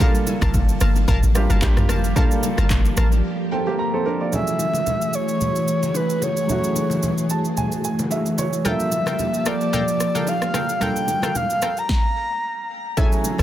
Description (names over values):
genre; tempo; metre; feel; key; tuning
amapiano; 111 BPM; 4/4; swing 55% on 16ths; unclear; A4 = 439 Hz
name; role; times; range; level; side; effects
warm baby grand piano; accompaniment; 0.0-13.4 s; F#3 to Bb5; -26 LUFS; right 3 dB; none
string machine, violas; sustained chords; 0.0-13.4 s; E3 to A5; -25 LUFS; equal; ensemble chorus, sidechain pumping
analog pluck; stabs; 0.0-3.1, 8.6-13.4 s; F4 to A5; -30 LUFS; left 2 dB; chorus, digital delay
deep house drum kit; drums; 0.0-13.4 s; handclaps, kick drum, rim click, shaker, snare drum, toms; -22 LUFS; equal; none
congas and bongos; percussion; 0.0-13.4 s; none; -30 LUFS; left 2 dB; none
deep log drum bass; bass; 0.4-3.2, 13.4 s; F#1 to A1; -18 LUFS; equal; none
breathy flute-like synth lead; melody; 4.3-12.7 s; B4 to Bb5; -24 LUFS; equal; chorus, tremolo, digital delay
room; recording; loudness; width
digital ambience; dense, heavily limited modern master; -18 LUFS; side -12 dB against mid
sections
0.0-4.3 A section; 4.3-13.0 B section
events
drop 0.0-4.3; break 3.2-4.3; grand piano fill 3.2-4.3, 7.0-8.7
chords
0.0 Gm9; 4.3 F#m9; 8.7 Gm9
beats
| 0.00 0.54 1.08 1.62 | 2.16 2.70 3.25 3.79 | 4.33 4.87 5.41 5.95 | 6.49 7.03 7.57 8.11 | 8.65 9.19 9.73 10.27 | 10.81 11.35 11.89 12.43 | 12.97